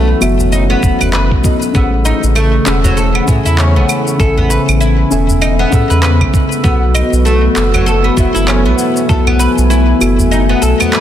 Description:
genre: organic downtempo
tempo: 98 BPM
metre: 4/4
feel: swing 59% on 16ths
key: unclear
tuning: A4 = 440 Hz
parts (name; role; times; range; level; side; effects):
- muted felt-like synth keys; accompaniment; 0.0-11.0 s; B3 to E6; -18 LUFS; left 2 dB; chorus, sidechain pumping, ping-pong delay
- warbly tape-like pad; sustained chords; 0.0-11.0 s; C#3 to G#5; -17 LUFS; left 1 dB; chorus, built-in reverb, sidechain pumping
- oud; arpeggios; 0.0-11.0 s; F#3 to B4; -17 LUFS; equal; ping-pong delay
- warm sub bass; bass; 0.0-10.7 s; E1 to A2; -13 LUFS; equal; sidechain pumping
- electronic claves, shaker and handclaps; drums; 0.2-11.0 s; none; -20 LUFS; right 2 dB; none
- udu; percussion; 0.4-10.9 s; none; -18 LUFS; equal; none
- electronic kick drum; drums; 0.8-9.2 s; none; -14 LUFS; equal; none
room: light reverb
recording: dense, heavily limited modern master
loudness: -9 LUFS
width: side -10 dB against mid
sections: 0.0-11.0 A section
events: kick drops out 10.3-11.0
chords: 0.0 B7sus4; 1.7 Amaj7; 6.6 B7sus4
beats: 0.52 1.14 | 1.75 2.36 2.97 3.58 | 4.20 4.81 5.42 6.03 | 6.65 7.26 7.87 8.48 | 9.10 9.71 10.32 10.93

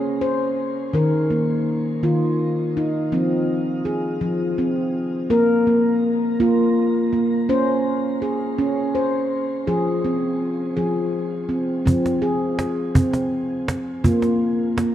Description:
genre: world meditative, meditative tuned percussion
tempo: 55 BPM (dotted quarters)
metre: 6/8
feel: straight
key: F minor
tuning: A4 = 440 Hz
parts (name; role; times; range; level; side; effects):
- handpan; arpeggios; 0.0-14.9 s; Eb3 to C5; -19 LUFS; equal; shimmer reverb
- cajon; percussion; 11.9-14.9 s; none; -21 LUFS; right 1 dB; none
room: wet church reverb, RT60 2.6 s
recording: cassette tape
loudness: -19 LUFS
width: side -11 dB against mid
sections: 0.0-11.9 A section; 11.9-14.9 B section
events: none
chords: 0.0 Db5; 0.9 Eb5; 3.1 Fm; 5.3 Bb5; 7.5 Db5; 9.7 Fm; 14.1 Bb5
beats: | 0.94 2.03 | 3.12 4.21 | 5.30 6.40 | 7.49 8.58 | 9.68 10.77 | 11.86 12.96 | 14.05

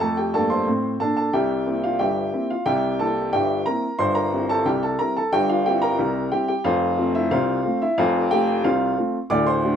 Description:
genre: ragtime piano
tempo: 90 BPM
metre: 2/4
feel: straight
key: F major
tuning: A4 = 443 Hz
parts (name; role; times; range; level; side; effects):
- clear upright piano; solo; 0.0-9.8 s; D1 to D6; -19 LUFS; equal; none
room: moderate studio ambience, RT60 0.5 s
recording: band playing live in one room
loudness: -19 LUFS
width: side -8 dB against mid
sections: 0.0-9.8 A section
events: none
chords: 0.0 F; 1.3 C7/G; 6.7 F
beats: | 0.00 0.67 | 1.33 2.00 | 2.66 3.33 | 3.99 4.66 | 5.32 5.99 | 6.65 7.32 | 7.98 8.64 | 9.31

